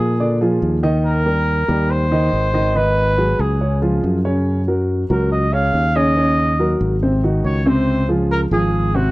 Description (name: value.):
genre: Afro-Cuban jazz.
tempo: 141 BPM.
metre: 4/4.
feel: straight.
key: unclear.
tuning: A4 = 440 Hz.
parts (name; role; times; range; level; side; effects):
mellow trumpet; melody; 0.0-9.1 s; Gb4 to F5; -20 LUFS; equal; none.
warm grand piano; accompaniment; 0.0-9.1 s; C3 to Eb5; -19 LUFS; equal; none.
fingered electric bass; bass; 0.0-9.1 s; Ab1 to Bb2; -18 LUFS; equal; none.
room: small room reverb.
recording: dry, close 1970s-style studio recording.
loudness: -15 LUFS.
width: side -19 dB against mid.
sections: 0.0-9.1 A section.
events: none.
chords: 0.0 Bb7; 1.1 Eb; 2.8 Abm7; 3.6 Db; 4.5 Gb6; 6.2 Ebm7; 7.0 Ab7; 7.9 Dbmaj7.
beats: 0.20 0.62 | 1.05 1.48 1.90 2.33 | 2.76 3.18 3.61 4.04 | 4.46 4.89 5.31 5.74 | 6.17 6.59 7.02 7.45 | 7.88 8.30 8.73.